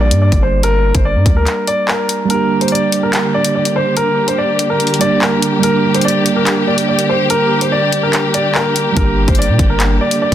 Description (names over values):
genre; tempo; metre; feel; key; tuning
hip hop, drill; 144 BPM; 4/4; half-time; G minor; A4 = 440 Hz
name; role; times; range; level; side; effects
dark baby grand piano; melody; 0.0-10.3 s; Bb4 to D5; -16 LUFS; left 1 dB; low-pass filter, ping-pong delay
mellow tine electric piano; accompaniment; 0.0-10.3 s; G3 to G4; -18 LUFS; right 6 dB; low-pass filter
long sustained 808-style bass; bass; 0.0-1.5, 9.0-10.3 s; G1 to Bb2; -14 LUFS; equal; none
drill drum kit; drums; 0.1-10.3 s; handclaps, hi-hat, kick drum; -17 LUFS; left 1 dB; none
dark symphonic string section; sustained chords; 2.3-10.3 s; D3 to G4; -19 LUFS; left 2 dB; none
room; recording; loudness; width
light reverb, digital ambience; dense, heavily limited modern master; -11 LUFS; side -11 dB against mid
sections
0.0-10.3 A section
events
break 1.5-2.3; kick muted 2.3-9.0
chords
0.0 Gm